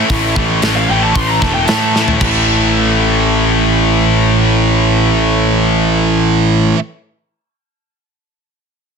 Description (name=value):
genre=heavy metal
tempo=113 BPM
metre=4/4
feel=straight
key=unclear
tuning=A4 = 440 Hz
part: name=heavy high-gain guitar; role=riff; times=0.0-6.8 s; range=A2 to A3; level=-16 LUFS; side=right 13 dB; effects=distortion
part: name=tight distorted guitar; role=riff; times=0.0-6.8 s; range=A2 to A3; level=-16 LUFS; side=left 13 dB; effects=distortion
part: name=fuzz picked electric bass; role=bass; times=0.0-6.7 s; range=E1 to A2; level=-16 LUFS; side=equal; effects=overdrive
part: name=tight metal drum kit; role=drums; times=0.1-2.3 s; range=crash cymbal, hi-hat, kick drum, snare drum, toms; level=-19 LUFS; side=equal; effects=soft clipping on kick
part: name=high-gain lead guitar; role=melody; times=0.8-2.1 s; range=F5 to C6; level=-21 LUFS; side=equal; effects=distortion, digital delay
room=little or no reverb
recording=dense, heavily limited modern master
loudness=-10 LUFS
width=side -6 dB against mid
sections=0.0-2.2 A section; 2.2-6.4 B section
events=lead electric guitar solo 0.0-2.2; drum fill 1.9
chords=0.0 A5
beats=| 0.10 0.63 1.16 1.68 | 2.21 2.74 3.27 3.80 | 4.33 4.86 5.39 5.92